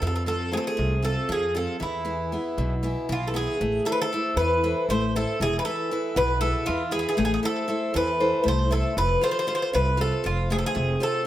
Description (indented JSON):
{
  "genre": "greek folk, Greek bouzouki band",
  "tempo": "234 BPM (eighths)",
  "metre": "7/8",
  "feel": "straight",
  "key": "unclear",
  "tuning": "A4 = 440 Hz",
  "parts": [
    { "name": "Greek bouzouki", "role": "melody", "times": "0.0-11.3 s", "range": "E4 to C5", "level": "-26 LUFS", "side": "equal", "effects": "slapback echo" },
    { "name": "picked steel-string acoustic guitar", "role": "accompaniment", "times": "0.0-11.3 s", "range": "B2 to C5", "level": "-28 LUFS", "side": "left 1 dB", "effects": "none" },
    { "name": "upright bass", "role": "bass", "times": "0.0-10.9 s", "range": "E1 to F2", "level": "-27 LUFS", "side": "equal", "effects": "none" }
  ],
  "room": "moderate plate reverb, RT60 2.6 s",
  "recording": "none",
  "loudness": "-22 LUFS",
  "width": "side -13 dB against mid",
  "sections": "0.0-3.6 A section; 3.6-11.3 B section",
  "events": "none",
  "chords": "0.0 F; 1.8 E; 3.6 Am; 5.4 E; 7.2 Am; 9.0 F"
}